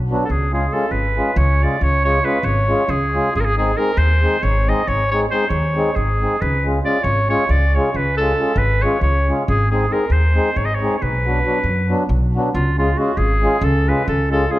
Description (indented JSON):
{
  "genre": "balkan folk, Balkan wedding band",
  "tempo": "274 BPM (eighths)",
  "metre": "7/8",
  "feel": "straight",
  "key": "unclear",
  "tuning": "A4 = 440 Hz",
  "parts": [
    { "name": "upright bass", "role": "bass", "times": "0.0-14.4 s", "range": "G#1 to F#2", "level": "-18 LUFS", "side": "equal", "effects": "none" },
    { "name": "mellow accordion", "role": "accompaniment", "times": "0.1-14.6 s", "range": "F#3 to G#4", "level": "-21 LUFS", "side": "left 1 dB", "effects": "none" },
    { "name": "bright clarinet", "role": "melody", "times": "0.2-14.6 s", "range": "E#4 to D#5", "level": "-20 LUFS", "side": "equal", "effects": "none" }
  ],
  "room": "moderate recital hall reverb, RT60 1.5 s",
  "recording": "dark, warm production",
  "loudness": "-15 LUFS",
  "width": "side -16 dB against mid",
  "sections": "0.3-12.6 A section; 12.6-14.6 A section",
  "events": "none",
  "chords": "0.3 C#; 3.4 G#; 6.4 C#; 9.5 G#; 11.0 Bm; 12.6 C#"
}